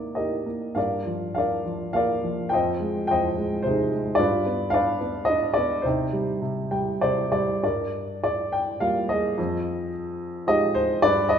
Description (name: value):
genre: classical, lyrical solo piano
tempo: 98-111 BPM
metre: 3/4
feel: rubato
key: unclear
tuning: A4 = 441 Hz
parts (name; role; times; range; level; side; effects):
- dark baby grand piano; solo; 0.0-11.4 s; F2 to G5; -22 LUFS; equal; none
room: wet recital hall reverb, RT60 1.5 s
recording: recorded in a church or concert hall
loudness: -22 LUFS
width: side -8 dB against mid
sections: 0.0-7.6 A section; 7.6-11.4 B section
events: grand piano fill 6.4-7.6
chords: 0.0 Cm9; 0.8 Gm7; 2.5 Fm9; 4.2 G7; 5.9 Cm; 7.6 Gm7; 9.4 Fm9